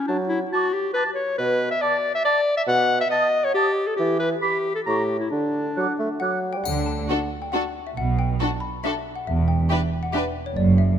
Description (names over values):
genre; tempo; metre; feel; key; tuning
cinematic, playful, whimsical film cue; 138 BPM; 3/4; straight; D major; A4 = 440 Hz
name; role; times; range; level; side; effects
clear clarinet; second line; 0.0-6.2 s; D4 to F#5; -22 LUFS; left 2 dB; none
warm bassoon; accompaniment; 0.1-6.7 s; A2 to A3; -27 LUFS; right 2 dB; none
clear oboe; second line; 0.5-6.4 s; F#5 to B5; -28 LUFS; right 1 dB; none
mellow hollow flute section; second line; 0.5-6.3 s; C#6 to D#6; -31 LUFS; right 4 dB; none
xylophone with soft rubber mallets; melody; 6.2-11.0 s; C#5 to B5; -30 LUFS; left 6 dB; none
rich studio cello section; bass; 6.7-10.9 s; E2 to D3; -24 LUFS; right 2 dB; none
rich studio double bass section; bass; 6.7-10.9 s; E1 to D2; -25 LUFS; right 4 dB; none
triangle; percussion; 6.7-7.5 s; none; -34 LUFS; left 9 dB; none
rich studio violin section; melody; 7.1-10.2 s; A4 to B4; -33 LUFS; left 2 dB; none
rich studio violin section; second line; 7.1-10.2 s; F#4 to G4; -32 LUFS; left 2 dB; none
rich studio viola section; accompaniment; 7.1-10.2 s; D4; -31 LUFS; right 1 dB; none
room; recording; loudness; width
moderate concert hall reverb, RT60 2.2 s; none; -20 LUFS; side -9 dB against mid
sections
0.0-6.7 A section; 6.7-11.0 A section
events
none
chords
0.1 D/F# (rootless); 1.4 Bm7; 4.0 E5; 4.9 A7(no3); 5.3 D; 8.0 Bm7; 9.3 Em7